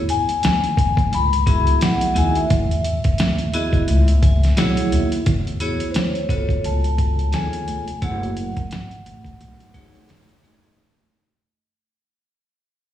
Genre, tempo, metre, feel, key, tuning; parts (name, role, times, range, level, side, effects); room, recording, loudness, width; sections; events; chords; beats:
hip hop, jazz-hop; 87 BPM; 4/4; swing 58% on 16ths; E major; A4 = 440 Hz
upright bass; bass; 0.0-10.7 s; E#1 to E2; -20 LUFS; equal
vibraphone with medium mallets; melody; 0.1-10.1 s; C5 to B5; -24 LUFS; left 4 dB; slapback echo
boom bap sampler-style drum kit; drums; 0.1-10.8 s; hi-hat, kick drum, snare drum; -21 LUFS; equal; overdrive, slapback echo
vibraphone with hard mallets; accompaniment; 1.5-10.8 s; A3 to G#5; -26 LUFS; right 2 dB; slapback echo
moderate club reverb, RT60 0.8 s; live gig heard through the venue's PA, recital hall reverb, vinyl crackle; -17 LUFS; side -11 dB against mid
0.0-5.3 A section; 5.3-10.8 B section
vibraphone fill 3.9-5.3, 9.7-10.8; fade-out 5.3-10.8
0.0 E69; 6.6 C#7b13; 8.0 F#m7; 9.4 B13
0.43 1.12 1.81 | 2.50 3.19 3.88 4.57 | 5.26 5.95 6.64 7.33 | 8.02 8.71 9.40 10.09